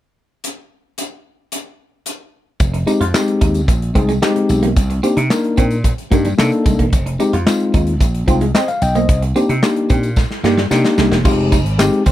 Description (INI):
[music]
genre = early-eighties boogie funk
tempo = 111 BPM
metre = 4/4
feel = straight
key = F minor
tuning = A4 = 440 Hz
[part]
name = modern studio drum kit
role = drums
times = 0.4-12.1 s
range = crash cymbal, handclaps, hi-hat, kick drum, snare drum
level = -18 LUFS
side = equal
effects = none
[part]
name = slap bass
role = bass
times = 2.6-12.1 s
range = E1 to C3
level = -18 LUFS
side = equal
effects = none
[part]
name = tambourine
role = percussion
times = 2.6-12.1 s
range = none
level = -34 LUFS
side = left 7 dB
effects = none
[part]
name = clean electric guitar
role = riff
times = 2.7-12.1 s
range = G3 to F4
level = -22 LUFS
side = right 5 dB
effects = lush chorus
[part]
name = mellow tine electric piano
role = accompaniment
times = 2.9-12.0 s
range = Ab3 to G5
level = -16 LUFS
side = left 2 dB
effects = none
[sound]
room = little or no reverb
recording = none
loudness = -13 LUFS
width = side -13 dB against mid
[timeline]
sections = 0.4-2.6 A section; 2.6-11.2 B section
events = drum fill 10.2-11.2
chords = 0.4 N.C.; 2.6 Fm9; 4.8 Cm9; 6.9 Fm9; 9.1 Cm9; 11.2 Fm9